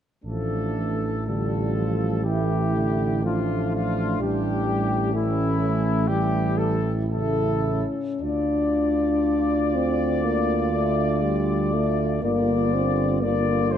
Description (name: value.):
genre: classical, hymn-like piece for brass band.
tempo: 60 BPM.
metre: 4/4.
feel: uneven beats, rubato.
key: D minor.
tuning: A4 = 440 Hz.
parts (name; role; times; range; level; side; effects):
clear trumpet section; melody; 0.2-13.8 s; E4 to D5; -28 LUFS; left 7 dB; none.
mellow French horn section; second line; 0.2-13.8 s; C#4 to F4; -30 LUFS; right 8 dB; none.
mellow euphonium; accompaniment; 0.2-13.8 s; G3 to D4; -26 LUFS; left 2 dB; none.
dark tuba; bass; 0.2-13.8 s; G1 to D2; -26 LUFS; right 1 dB; none.
warm trombone; accompaniment; 0.3-13.8 s; C#3 to F3; -31 LUFS; right 3 dB; none.
room: moderate concert hall reverb, RT60 2.2 s.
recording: dark, warm production.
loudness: -21 LUFS.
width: side -9 dB against mid.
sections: 0.2-8.2 A section; 8.2-13.8 B section.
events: none.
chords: 0.2 Dm/A; 4.2 A7; 8.2 Dm; 12.2 G5.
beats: | 0.24 1.27 2.24 3.22 | 4.19 5.13 6.08 7.11 | 8.21 9.24 10.23 11.23 | 12.24 13.23.